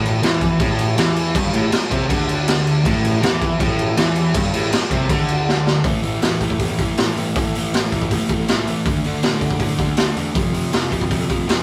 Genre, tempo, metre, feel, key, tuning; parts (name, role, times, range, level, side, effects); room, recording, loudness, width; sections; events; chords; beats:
punk rock; 160 BPM; 4/4; straight; A minor; A4 = 442 Hz
crunchy overdriven guitar; riff; 0.0-11.6 s; F2 to D4; -24 LUFS; equal
overdriven semi-hollow guitar; riff; 0.0-5.8 s; G2 to E3; -25 LUFS; equal
fuzz picked electric bass; bass; 0.0-11.6 s; F1 to D3; -30 LUFS; equal; overdrive
raw garage drum kit; drums; 0.1-11.6 s; crash cymbal, hi-hat, kick drum, snare drum; -22 LUFS; equal
light reverb; rough rehearsal-room recording; -19 LUFS; mono
0.0-5.8 A section; 5.8-11.6 B section
drum fill 5.5-5.8
0.0 Am; 5.8 A5; 8.9 D5; 10.4 F5
0.24 0.61 0.98 | 1.35 1.73 2.10 2.48 | 2.85 3.22 3.60 3.97 | 4.34 4.72 5.09 5.47 | 5.85 6.22 6.60 6.97 | 7.35 7.73 8.10 8.48 | 8.86 9.23 9.61 9.99 | 10.36 10.74 11.12 11.49